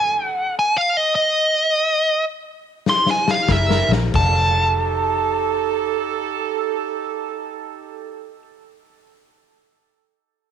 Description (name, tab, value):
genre	electric blues shuffle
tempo	free time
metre	none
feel	none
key	F mixolydian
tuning	A4 = 441 Hz
part	dark smooth lead guitar	melody	0.0-8.4 s	Eb5 to C6	-18 LUFS	equal	overdrive
part	raw garage drum kit	drums	2.9-4.3 s	crash cymbal, kick drum, snare drum	-22 LUFS	left 5 dB	none
part	clear saxophone section	stabs	3.5-8.4 s	Eb4 to Bb4	-24 LUFS	right 13 dB	tape echo
part	vintage muted fingered electric bass	bass	3.5-8.4 s	F1 to Bb1	-22 LUFS	equal	none
room	light reverb, small room ambience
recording	1960s-style stereo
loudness	-17 LUFS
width	side -8 dB against mid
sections	0.0-4.1 A section; 4.1-9.5 B section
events	slowing down 0.0-4.1; stop 0.0-3.5; drum fill 2.9-4.1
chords	0.0 N.C.; 3.5 Gb9; 4.1 F9